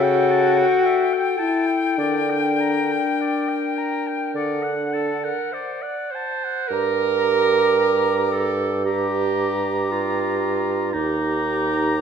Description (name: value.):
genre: classical, slow romantic movement for wind quintet.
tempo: 49-59 BPM.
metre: 4/4.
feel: rubato.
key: G minor.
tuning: A4 = 440 Hz.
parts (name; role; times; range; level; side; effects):
silver concert flute; melody; 0.0-12.0 s; F#5 to D6; -28 LUFS; left 8 dB; none.
clear oboe; second line; 0.0-12.0 s; D5 to Bb5; -28 LUFS; left 3 dB; none.
bright clarinet; accompaniment; 0.0-12.0 s; Eb4 to D5; -24 LUFS; right 8 dB; none.
mellow French horn; accompaniment; 0.0-12.0 s; D4 to G4; -24 LUFS; left 3 dB; none.
mellow bassoon; bass; 0.0-12.0 s; Eb2 to D3; -24 LUFS; right 1 dB; none.
room: wet recital hall reverb, RT60 1.4 s.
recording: dark, warm production.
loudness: -19 LUFS.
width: side -7 dB against mid.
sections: 0.0-6.7 A section; 6.7-12.0 B section.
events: none.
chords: 0.0 A7/C#; 2.0 Gm/D; 4.4 D; 6.7 Gm; 10.9 Ebmaj7.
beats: 0.84 | 1.99 3.19 4.35 5.53 | 6.71 7.79 8.87 9.92 | 10.95 11.97.